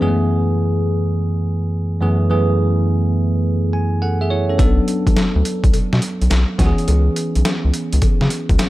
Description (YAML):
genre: R&B, new jack swing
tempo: 105 BPM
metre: 4/4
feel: swing 67% on 16ths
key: F# minor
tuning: A4 = 441 Hz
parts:
  - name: bell-like tine electric piano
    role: accompaniment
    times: 0.0-8.7 s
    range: F#2 to G#5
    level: -17 LUFS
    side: equal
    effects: phaser
  - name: round analog bass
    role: bass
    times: 4.6-8.6 s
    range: A1 to C#3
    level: -16 LUFS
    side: equal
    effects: none
  - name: boom bap sampler-style drum kit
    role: drums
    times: 4.6-8.7 s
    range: hi-hat, kick drum, snare drum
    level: -18 LUFS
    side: equal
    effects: overdrive
  - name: cowbell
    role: percussion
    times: 4.6-8.7 s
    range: none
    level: -34 LUFS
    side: left 8 dB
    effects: none
room: digital ambience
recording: none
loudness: -15 LUFS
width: side -17 dB against mid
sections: 0.0-8.7 A section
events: tine electric piano fill 3.4-4.6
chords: 0.0 F#m11; 4.6 Bm7; 6.6 C#m7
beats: | 0.02 0.59 1.16 1.73 | 2.31 2.88 3.45 4.02 | 4.59 5.16 5.73 6.30 | 6.88 7.45 8.02 8.59